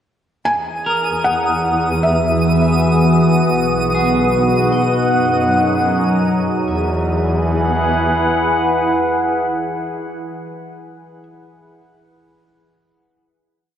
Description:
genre	ambient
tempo	78 BPM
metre	4/4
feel	straight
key	E lydian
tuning	A4 = 440 Hz
part	felt-muted upright piano	melody	0.5-3.5 s	E5 to G#5	-20 LUFS	equal	diffuse ambient delay
part	evolving wavetable pad	sustained chords	1.1-10.5 s	B2 to F#5	-16 LUFS	equal	phaser, built-in reverb
part	clear studio double bass section	bass	0.5-8.9 s	B1 to F#2	-22 LUFS	equal	none
part	twinkling granular texture	texture	0.8-6.7 s	D#6	-25 LUFS	right 1 dB	built-in reverb, lush chorus
part	electric guitar at the edge of break-up	arpeggios	0.9-11.2 s	G#4 to E5	-26 LUFS	equal	wide subtle chorus, diffuse ambient delay
room	wet lush hall reverb, RT60 2.7 s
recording	dreamy mix soaked in reverb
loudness	-14 LUFS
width	side -9 dB against mid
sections	0.5-6.7 A section; 6.7-9.8 final chord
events	fade-out on clean electric guitar 0.5-6.7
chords	0.5 Eadd9; 3.6 B; 5.1 F#6; 6.7 Eadd9

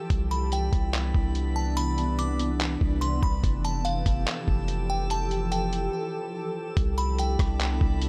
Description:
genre	hip hop, atmospheric cloud-rap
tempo	144 BPM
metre	4/4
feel	half-time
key	C major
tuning	A4 = 440 Hz
part	shimmering ambient pad	sustained chords	0.0-8.1 s	C3 to A4	-34 LUFS	equal	chorus, built-in reverb, sidechain pumping
part	drifting glass-harmonics texture	texture	0.0-8.1 s	E4 to E6	-43 LUFS	equal	chorus, built-in reverb
part	long sustained 808-style bass	bass	0.1-8.1 s	F1 to C2	-30 LUFS	equal	none
part	lo-fi sampler-style drum kit	drums	0.1-8.1 s	handclaps, hi-hat, kick drum, rim click	-30 LUFS	equal	none
part	delicate synth tine bell	melody	0.3-8.1 s	F5 to D6	-35 LUFS	equal	chorus, digital delay
room	digital ambience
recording	none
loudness	-27 LUFS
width	mono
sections	0.0-6.8 A section; 6.8-8.1 B section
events	break 5.9-6.8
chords	0.1 Cmaj9; 3.4 Fmaj9; 6.8 Cmaj9

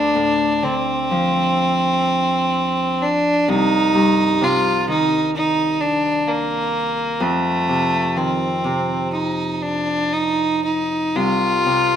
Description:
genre	celtic folk, Celtic slow air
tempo	58-66 BPM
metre	4/4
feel	rubato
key	unclear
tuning	A4 = 441 Hz
part	bright fiddle	melody	0.0-12.0 s	A3 to F4	-18 LUFS	equal	none
part	Celtic harp	accompaniment	0.0-12.0 s	C2 to F3	-22 LUFS	left 1 dB	none
room	moderate recital hall reverb, RT60 1.6 s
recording	minimal, uncompressed stereo recording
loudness	-16 LUFS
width	side -9 dB against mid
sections	0.0-12.0 A section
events	none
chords	0.0 Dm7; 3.5 Cm; 7.2 F7

